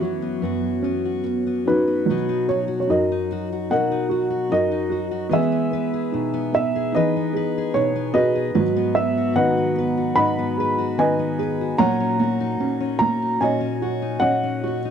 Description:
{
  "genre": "acoustic folk-pop ballad",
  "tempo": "74 BPM",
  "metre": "4/4",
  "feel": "straight",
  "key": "B major",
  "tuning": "A4 = 438 Hz",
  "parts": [
    { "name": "dark upright piano", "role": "melody", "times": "0.0-14.9 s", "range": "D#4 to B5", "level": "-22 LUFS", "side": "right 1 dB", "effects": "none" },
    { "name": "fingerpicked steel-string acoustic guitar", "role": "accompaniment", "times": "0.0-14.9 s", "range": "F#2 to B4", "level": "-25 LUFS", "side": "left 9 dB", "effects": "none" },
    { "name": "felt-muted upright piano", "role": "arpeggios", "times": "0.0-14.9 s", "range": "E3 to G#4", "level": "-25 LUFS", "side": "right 6 dB", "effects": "none" }
  ],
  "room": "small room reverb",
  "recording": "dry, close 1970s-style studio recording",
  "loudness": "-19 LUFS",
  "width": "side -8 dB against mid",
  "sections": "0.0-2.1 A section; 2.1-14.9 B section",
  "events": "none",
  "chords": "0.0 F#7sus4; 2.1 Bmaj7; 5.3 Emaj7; 8.5 G#m7; 11.8 D#m7/A#",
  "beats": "0.42 1.24 | 2.06 2.87 3.68 4.49 | 5.30 6.12 6.92 7.73 | 8.54 9.35 10.16 10.97 | 11.78 12.60 13.41 14.23"
}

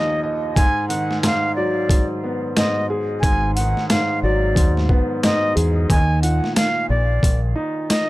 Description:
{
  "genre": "hip hop, boom-bap hip-hop",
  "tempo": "90 BPM",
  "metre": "4/4",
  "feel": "swing 61% on 16ths",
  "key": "unclear",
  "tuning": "A4 = 440 Hz",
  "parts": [
    { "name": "reedy concert flute", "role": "melody", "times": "0.0-8.1 s", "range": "D5 to Ab5", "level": "-23 LUFS", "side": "equal", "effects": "high-pass filter, low-pass filter, tape echo" },
    { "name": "warm upright piano", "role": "accompaniment", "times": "0.0-8.1 s", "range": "Eb2 to Eb5", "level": "-23 LUFS", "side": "equal", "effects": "high-pass filter, low-pass filter" },
    { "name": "boom bap sampler-style drum kit", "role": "drums", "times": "0.6-8.1 s", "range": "hi-hat, kick drum, rim click, snare drum", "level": "-19 LUFS", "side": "equal", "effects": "overdrive" },
    { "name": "deep dub fingered electric bass", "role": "bass", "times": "3.2-7.5 s", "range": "Ab1 to Fb2", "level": "-19 LUFS", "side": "equal", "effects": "none" }
  ],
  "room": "light reverb",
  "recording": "none",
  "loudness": "-17 LUFS",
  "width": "side -18 dB against mid",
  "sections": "0.0-8.1 A section",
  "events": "break 0.0-3.2",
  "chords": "0.0 Ebsus2; 0.6 Abm7; 5.9 Eb5",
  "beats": "| 0.56 1.23 1.90 2.56 | 3.23 3.90 4.56 5.23 | 5.90 6.56 7.23 7.90"
}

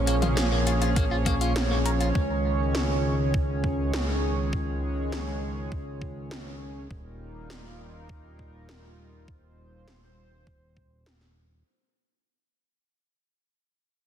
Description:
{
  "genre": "synthwave",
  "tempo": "101 BPM",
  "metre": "4/4",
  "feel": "straight",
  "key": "unclear",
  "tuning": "A4 = 440 Hz",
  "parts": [
    { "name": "chorused pulse-width pad", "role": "sustained chords", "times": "0.0-11.6 s", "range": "Eb3 to Db5", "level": "-30 LUFS", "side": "right 1 dB", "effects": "sidechain pumping" },
    { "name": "chorused synth bass", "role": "bass", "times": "0.0-11.6 s", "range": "Eb1 to Db2", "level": "-29 LUFS", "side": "equal", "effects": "sidechain pumping" },
    { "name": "clean electric guitar", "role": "riff", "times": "0.1-2.1 s", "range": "Bb3 to Bb4", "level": "-33 LUFS", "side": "left 4 dB", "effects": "lush chorus, tape echo" },
    { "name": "80s electronic pad drums", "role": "drums", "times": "0.1-11.3 s", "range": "hi-hat, snare drum, toms", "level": "-32 LUFS", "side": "left 1 dB", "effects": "gated reverb on snare and toms, overdrive" },
    { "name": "electronic kick drum", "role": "drums", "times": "1.0-10.9 s", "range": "none", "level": "-28 LUFS", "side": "equal", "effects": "none" }
  ],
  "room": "light reverb",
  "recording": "dense, heavily limited modern master",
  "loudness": "-24 LUFS",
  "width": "side -9 dB against mid",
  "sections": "0.0-11.7 A section",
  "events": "fade-out 0.0-11.7",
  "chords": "0.0 Bbm; 2.2 Dbsus2; 6.9 Ebadd9",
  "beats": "0.37 0.96 1.56 | 2.15 2.75 3.34 3.93 | 4.53 5.12 5.72 6.31 | 6.90 7.50 8.09 8.69 | 9.28 9.88 10.47 11.06"
}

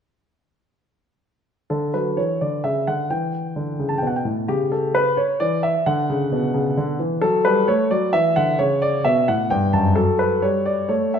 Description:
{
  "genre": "classical-period piano sonatina",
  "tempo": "130 BPM",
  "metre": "3/4",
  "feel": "straight",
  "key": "D major",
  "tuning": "A4 = 440 Hz",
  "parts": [
    { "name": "warm grand piano", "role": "solo", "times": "1.7-11.2 s", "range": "F#2 to A5", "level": "-18 LUFS", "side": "equal", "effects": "none" }
  ],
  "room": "moderate recital hall reverb, RT60 1.5 s",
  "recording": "minimal, uncompressed stereo recording",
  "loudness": "-18 LUFS",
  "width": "side -7 dB against mid",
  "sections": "1.7-11.2 A section",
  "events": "none",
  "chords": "1.7 D; 3.1 Em7; 4.5 C#m7b5; 5.9 D; 7.2 F#madd11; 8.1 Dadd9; 8.6 A/C#; 9.5 F#m; 10.0 N.C.",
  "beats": "| 1.71 2.17 2.64 | 3.10 3.56 4.02 | 4.48 4.94 5.40 | 5.86 6.31 6.76 | 7.21 7.67 8.12 | 8.59 9.05 9.50 | 9.96 10.43 10.90"
}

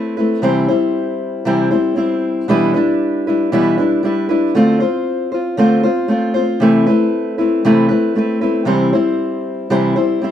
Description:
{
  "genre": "pop",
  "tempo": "116 BPM",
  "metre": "4/4",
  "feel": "swing 60% on 16ths",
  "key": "C major",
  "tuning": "A4 = 440 Hz",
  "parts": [
    { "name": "fingerpicked steel-string acoustic guitar", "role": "solo", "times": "0.0-10.3 s", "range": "B2 to C5", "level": "-13 LUFS", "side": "left 1 dB", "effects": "none" }
  ],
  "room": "wet studio ambience, RT60 0.5 s",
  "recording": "band playing live in one room",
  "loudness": "-13 LUFS",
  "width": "side -10 dB against mid",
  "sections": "0.4-10.3 A section",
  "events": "none",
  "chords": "0.4 C; 2.5 G6/B; 4.6 Dm7; 6.6 Amadd9/C; 8.7 C",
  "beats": "| 0.42 0.94 1.46 1.97 | 2.49 3.00 3.52 4.04 | 4.55 5.07 5.59 6.10 | 6.62 7.13 7.65 8.17 | 8.68 9.20 9.72 10.23"
}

